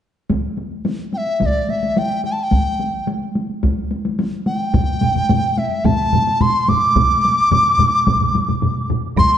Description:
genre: japanese traditional, taiko drum ensemble.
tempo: 108 BPM.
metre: 4/4.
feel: straight.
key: D suspended pentatonic.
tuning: A4 = 440 Hz.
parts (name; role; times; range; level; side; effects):
taiko ensemble; percussion; 0.3-9.4 s; none; -22 LUFS; left 1 dB; none.
taiko ensemble; percussion; 0.3-9.3 s; none; -21 LUFS; right 1 dB; none.
reedy large dizi; melody; 1.1-9.4 s; D5 to D6; -17 LUFS; equal; none.
solo taiko drums; percussion; 4.7-9.0 s; none; -23 LUFS; right 6 dB; none.
taiko ensemble; percussion; 4.7-9.3 s; none; -22 LUFS; left 5 dB; none.
woodblock; percussion; 9.2-9.3 s; none; -27 LUFS; right 6 dB; none.
room: wet recital hall reverb, RT60 1.4 s.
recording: nothing above 10.7 kHz.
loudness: -15 LUFS.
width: side -10 dB against mid.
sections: 0.3-9.2 A section.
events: stop 8.6-9.2.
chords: none.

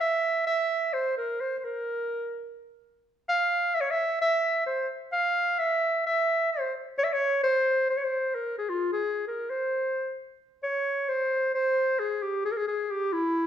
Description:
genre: klezmer.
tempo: 130 BPM.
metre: 4/4.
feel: straight.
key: C phrygian dominant.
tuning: A4 = 440 Hz.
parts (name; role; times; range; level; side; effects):
warm clarinet; solo; 0.0-13.5 s; E4 to F5; -25 LUFS; equal; none.
room: wet large studio reverb, RT60 1.2 s.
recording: band playing live in one room.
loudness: -25 LUFS.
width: side -9 dB against mid.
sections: 0.0-10.4 A section; 10.4-13.5 A section.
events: none.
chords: none.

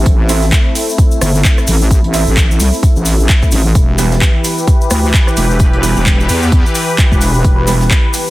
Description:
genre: bass house.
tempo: 130 BPM.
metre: 4/4.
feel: swing 58% on 16ths.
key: A minor.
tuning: A4 = 440 Hz.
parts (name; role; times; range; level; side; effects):
sweeping resonant pad; sustained chords; 0.0-8.3 s; E3 to B4; -19 LUFS; left 1 dB; chorus, sidechain pumping.
wobble bass; bass; 0.0-7.9 s; E1 to E2; -13 LUFS; equal; chorus, overdrive, sidechain pumping.
breakbeat sampler-style drum kit; drums; 0.1-8.3 s; hi-hat, snare drum; -28 LUFS; right 2 dB; none.
electronic kick drum; drums; 0.1-8.0 s; none; -11 LUFS; equal; none.
cabasa; percussion; 0.1-8.3 s; none; -24 LUFS; left 4 dB; none.
clear concert grand piano; stabs; 0.3-7.8 s; E3 to E4; -21 LUFS; right 5 dB; sidechain pumping, digital delay.
garage drum kit; drums; 0.3-8.2 s; handclaps, hi-hat, rim click; -18 LUFS; right 1 dB; overdrive.
room: digital ambience.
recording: dense, heavily limited modern master.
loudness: -9 LUFS.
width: side -17 dB against mid.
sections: 0.0-8.3 A section.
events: none.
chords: 0.0 Am; 3.8 Em.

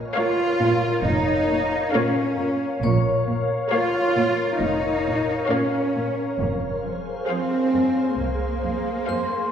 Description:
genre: cinematic, suspense film score.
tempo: 67 BPM.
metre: 4/4.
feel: straight.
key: unclear.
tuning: A4 = 441 Hz.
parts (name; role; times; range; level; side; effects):
glassy FM pad; sustained chords; 0.0-9.5 s; Ab4 to F5; -27 LUFS; left 1 dB; ensemble chorus, built-in reverb.
warm studio violin section; melody; 0.2-9.5 s; F5; -31 LUFS; left 4 dB; none.
dark studio viola section; accompaniment; 0.2-9.5 s; Ab4 to Db5; -29 LUFS; equal; none.
warm studio cello section; riff; 0.2-9.4 s; F2 to Bb3; -29 LUFS; right 1 dB; none.
warm studio cello section; bass; 0.2-9.5 s; Bb3 to F4; -23 LUFS; equal; none.
dark studio double bass section; bass; 1.1-8.9 s; F1 to C2; -28 LUFS; right 2 dB; none.
vibraphone with hard mallets; texture; 2.8-9.5 s; Db5 to Db6; -29 LUFS; left 2 dB; none.
room: wet scoring stage reverb, RT60 1.8 s.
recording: heard from further back in the room, lossy compression artefacts.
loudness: -20 LUFS.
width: side -8 dB against mid.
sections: 0.0-9.5 A section.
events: none.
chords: 0.0 Bbm; 6.4 Fm.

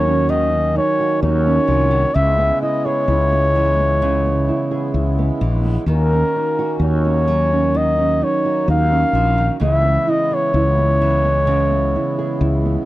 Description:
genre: acoustic folk-pop ballad.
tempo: 64 BPM.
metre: 4/4.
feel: straight.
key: unclear.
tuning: A4 = 440 Hz.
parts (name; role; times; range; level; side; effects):
mellow flugelhorn; melody; 0.0-12.9 s; A#4 to E#5; -18 LUFS; left 1 dB; none.
nylon-string guitar; accompaniment; 0.0-12.9 s; C#3 to G#4; -22 LUFS; right 4 dB; none.
pedal harmonium; sustained chords; 0.0-12.9 s; C#3 to F#4; -28 LUFS; left 2 dB; stereo widening.
mellow fretless electric bass; bass; 0.0-12.8 s; A#1 to D#2; -18 LUFS; left 1 dB; none.
room: little or no reverb.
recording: dry, close 1970s-style studio recording.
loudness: -15 LUFS.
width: side -16 dB against mid.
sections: 0.0-12.9 A section.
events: none.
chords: 0.0 D#m7; 2.2 C#m7; 5.9 D#m7; 9.6 C#m7.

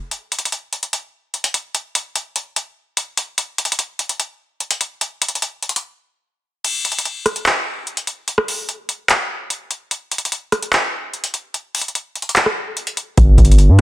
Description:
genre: hip hop, trap.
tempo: 147 BPM.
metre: 4/4.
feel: half-time.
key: unclear.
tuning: A4 = 440 Hz.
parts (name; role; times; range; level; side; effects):
booming analog drum machine; drums; 0.1-13.8 s; crash cymbal, handclaps, hi-hat, kick drum, rim click; -17 LUFS; equal; none.
distorted 808-style bass; bass; 13.2-13.8 s; G1 to G2; -9 LUFS; equal; distortion.
room: little or no reverb.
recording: dense, heavily limited modern master.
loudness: -17 LUFS.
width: side -17 dB against mid.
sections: 0.1-6.6 A section; 6.6-13.8 B section.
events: break 5.8-6.6; kick muted 6.6-13.2.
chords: none.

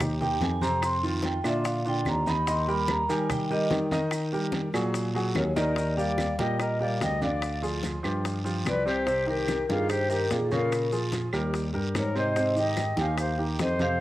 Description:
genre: Afro-Cuban jazz.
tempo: 146 BPM.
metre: 4/4.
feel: straight.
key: Eb major.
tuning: A4 = 442 Hz.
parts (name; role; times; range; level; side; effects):
warm concert grand piano; accompaniment; 0.0-14.0 s; C3 to Eb5; -31 LUFS; right 1 dB; cassette tape.
barky tine electric piano; bass; 0.0-14.0 s; C2 to Eb3; -30 LUFS; equal; none.
bongos; percussion; 0.0-14.0 s; none; -36 LUFS; left 5 dB; none.
claves; percussion; 0.0-13.4 s; none; -40 LUFS; right 3 dB; none.
congas; percussion; 0.0-14.0 s; none; -36 LUFS; equal; none.
guiro; percussion; 0.0-14.0 s; none; -41 LUFS; right 2 dB; none.
maracas; percussion; 0.0-14.0 s; none; -47 LUFS; left 2 dB; none.
vibraphone with medium mallets; melody; 0.2-14.0 s; Ab4 to C6; -29 LUFS; equal; cassette tape.
breathy silver concert flute; second line; 5.4-14.0 s; F4 to F5; -32 LUFS; left 2 dB; cassette tape.
room: light reverb.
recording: home recording on cassette.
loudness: -24 LUFS.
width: side -15 dB against mid.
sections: 0.0-5.8 A section; 5.8-14.0 B section.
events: vibraphone solo 0.0-5.8; drum fill 5.4-5.8.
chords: 0.0 Abmaj7; 0.8 F5; 1.7 Bb; 2.5 Eb; 4.9 Ebmadd11; 5.8 Ebmaj9; 7.4 Ddim; 8.2 Csus24; 9.1 Cm7; 10.7 Bbm7; 11.5 Eb6; 12.4 Abmaj7.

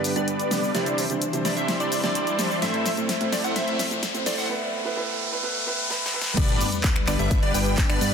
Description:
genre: EDM, festival progressive house.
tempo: 128 BPM.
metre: 4/4.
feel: straight.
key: G major.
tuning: A4 = 444 Hz.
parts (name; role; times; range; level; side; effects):
warm grand piano; accompaniment; 0.0-6.4 s; G2 to C5; -30 LUFS; right 3 dB; sidechain pumping, ping-pong delay.
lush unison pad; sustained chords; 0.0-8.1 s; D3 to C5; -33 LUFS; left 2 dB; chorus, phaser, sidechain pumping.
plucky unison lead; arpeggios; 0.0-8.1 s; D5 to G5; -31 LUFS; equal; cassette tape, sidechain pumping, ping-pong delay.
big supersaw lead; riff; 0.0-8.1 s; G3 to G5; -28 LUFS; equal; phaser, sidechain pumping, low-pass filter, ping-pong delay.
fat analog bass; bass; 0.0-8.1 s; G1 to G2; -31 LUFS; equal; none.
big-room dance drum kit; drums; 0.0-8.1 s; crash cymbal, finger snaps, handclaps, hi-hat, shaker, snare drum; -29 LUFS; left 1 dB; soft clipping on snare.
riser and sub drop; sound effects; 1.2-8.1 s; none; -31 LUFS; left 1 dB; none.
electronic kick drum; drums; 6.4-7.9 s; none; -23 LUFS; left 1 dB; none.
room: moderate huge ambient reverb, RT60 4.5 s.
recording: dense, heavily limited modern master, high-pass filter.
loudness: -22 LUFS.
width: side -6 dB against mid.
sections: 0.0-6.4 A section; 6.4-8.1 B section.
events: build-up 0.0-6.4; drum fill 0.0-4.5, 5.9-6.4; filter sweep on supersaw synth 0.0-6.4; filter sweep on digital synth lead 0.0-6.4; filter sweep 0.0-6.4; riser 1.2-6.4; drop 6.4-8.1; impact 6.4-8.1.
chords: 0.0 G; 0.7 Cadd9; 2.6 Am; 4.5 E5; 6.4 G.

